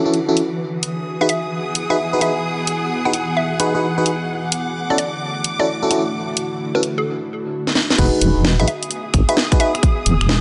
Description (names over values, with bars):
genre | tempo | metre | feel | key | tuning
UK garage, two-step garage | 130 BPM | 4/4 | swing 65% on 16ths | E major | A4 = 442 Hz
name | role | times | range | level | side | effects
hollow square pluck | melody | 0.0-9.8 s | A4 to F#5 | -27 LUFS | equal | chorus, dub echo
ethereal airy pad | sustained chords | 0.2-10.4 s | D3 to B4 | -30 LUFS | equal | ensemble chorus, built-in reverb, sidechain pumping
FM electric piano | stabs | 0.0-9.7 s | C#4 to B4 | -24 LUFS | equal | chorus, phaser, low-pass filter, dub echo
warm studio string section | texture | 0.0-10.4 s | E3 to D#6 | -28 LUFS | equal | sidechain pumping
garage drum kit | drums | 0.1-10.4 s | crash cymbal, finger snaps, hi-hat, snare drum | -22 LUFS | equal | none
deep soft wobble bass | bass | 8.0-10.4 s | E1 to B1 | -18 LUFS | equal | chorus
electronic kick drum | drums | 8.0-9.9 s | none | -18 LUFS | equal | none
room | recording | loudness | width
moderate lush hall reverb, RT60 2.0 s | nothing above 10.6 kHz | -19 LUFS | mono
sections
0.0-8.0 A section; 8.0-10.4 B section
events
drum fill 7.6-8.0; drop 8.0-10.4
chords
0.0 Dmaj9; 0.6 Emaj9; 4.3 Dadd9; 8.0 Emaj9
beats
0.14 | 0.60 1.06 1.52 1.98 | 2.44 2.91 3.37 3.83 | 4.29 4.75 5.21 5.67 | 6.14 6.60 7.06 7.52 | 7.98 8.45 8.91 9.37 | 9.83 10.29